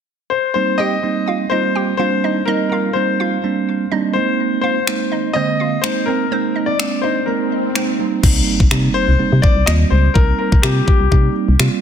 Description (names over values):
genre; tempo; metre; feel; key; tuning
dance-pop; 125 BPM; 4/4; straight; C minor; A4 = 439 Hz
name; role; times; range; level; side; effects
clear baby grand piano; melody; 0.3-11.3 s; G4 to Eb5; -20 LUFS; left 7 dB; ping-pong delay
bell-like tine electric piano; accompaniment; 0.6-11.8 s; D3 to F4; -20 LUFS; right 7 dB; sidechain pumping
hollow square pluck; melody; 0.8-8.1 s; C4 to G5; -25 LUFS; right 3 dB; chorus, sidechain pumping, ping-pong delay
swell and impact; sound effects; 6.7-10.2 s; none; -27 LUFS; left 2 dB; none
pop drum kit; drums; 4.9-11.7 s; crash cymbal, finger snaps, kick drum; -16 LUFS; left 1 dB; overdrive, soft clipping on snare
organ-like FM bass; bass; 8.2-11.7 s; C2 to C3; -15 LUFS; left 1 dB; sidechain pumping
room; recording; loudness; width
light reverb; dense, heavily limited modern master; -14 LUFS; side -8 dB against mid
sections
0.6-8.2 A section; 8.2-11.8 B section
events
swell 6.7-8.2; kick muted 7.3-8.2; impact 8.2-10.2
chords
0.0 N.C.; 0.6 Cm7; 4.2 Abadd9; 8.0 Cm7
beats
0.07 | 0.56 1.03 1.51 2.00 | 2.48 2.96 3.44 3.92 | 4.39 4.88 5.36 5.83 | 6.32 6.79 7.28 7.75 | 8.23 8.71 9.20 9.68 | 10.15 10.63 11.12 11.60